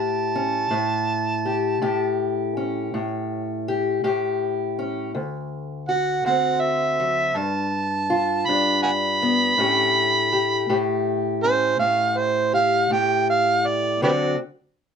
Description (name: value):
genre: acoustic country blues, solo or duo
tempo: 54 BPM (dotted quarters)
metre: 12/8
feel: straight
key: unclear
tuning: A4 = 439 Hz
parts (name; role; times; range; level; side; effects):
- overdriven harmonica; melody; 0.0-14.4 s; G4 to B5; -21 LUFS; right 3 dB; none
- fingerpicked steel-string acoustic guitar; accompaniment; 0.0-14.4 s; D2 to G4; -23 LUFS; left 2 dB; none
room: light reverb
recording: none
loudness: -20 LUFS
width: side -7 dB against mid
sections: 0.0-14.0 A section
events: none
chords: 0.0 A7; 5.1 D7; 7.4 G7; 9.6 A7; 14.0 D7